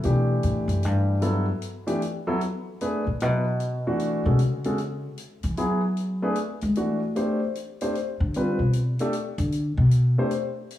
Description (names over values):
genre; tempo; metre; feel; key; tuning
modal jazz; 152 BPM; 3/4; swing 64% on 8ths; unclear; A4 = 443 Hz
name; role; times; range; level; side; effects
warm concert grand piano; accompaniment; 0.0-10.3 s; E3 to C5; -26 LUFS; equal; none
upright bass; bass; 0.0-10.1 s; F#2 to A3; -23 LUFS; left 1 dB; none
hi-hat; drums; 0.0-10.8 s; none; -44 LUFS; left 4 dB; none
room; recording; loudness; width
moderate plate reverb, RT60 1.4 s, studio reverb; dreamy mix soaked in reverb, small room ambience; -22 LUFS; side -13 dB against mid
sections
0.0-2.4 A section; 2.4-10.8 A section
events
upright bass solo 0.0-10.8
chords
0.0 Em11; 2.4 F#m11; 7.2 D7(no3)